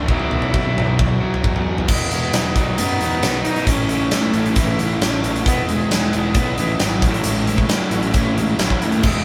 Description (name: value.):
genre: quiet-loud alternative rock.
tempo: 134 BPM.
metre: 4/4.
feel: straight.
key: unclear.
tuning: A4 = 443 Hz.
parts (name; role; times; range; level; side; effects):
warm cello; melody; 0.0-9.2 s; B2 to E4; -26 LUFS; equal; none.
fuzz guitar; riff; 0.0-1.9, 9.0-9.2 s; B2 to F#4; -26 LUFS; equal; distortion.
fuzz picked electric bass; bass; 0.0-9.2 s; E1 to B2; -26 LUFS; equal; overdrive.
overdriven semi-hollow guitar; riff; 0.1-9.2 s; A2 to E4; -25 LUFS; equal; none.
huge arena drum kit; drums; 0.1-9.1 s; crash cymbal, hi-hat, kick drum, snare drum, toms; -22 LUFS; equal; none.
room: moderate small room reverb, RT60 0.5 s.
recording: band playing live in one room.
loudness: -18 LUFS.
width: mono.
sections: 0.0-1.9 A section; 1.9-9.2 B section.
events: cello solo 1.9-9.2.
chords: 0.1 Bsus4; 1.9 E; 2.5 B; 3.7 A; 5.5 E; 7.0 A.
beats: | 0.08 0.53 0.98 1.43 | 1.88 2.33 2.77 3.22 | 3.67 4.12 4.57 5.01 | 5.46 5.91 6.36 6.80 | 7.25 7.70 8.15 8.60 | 9.04.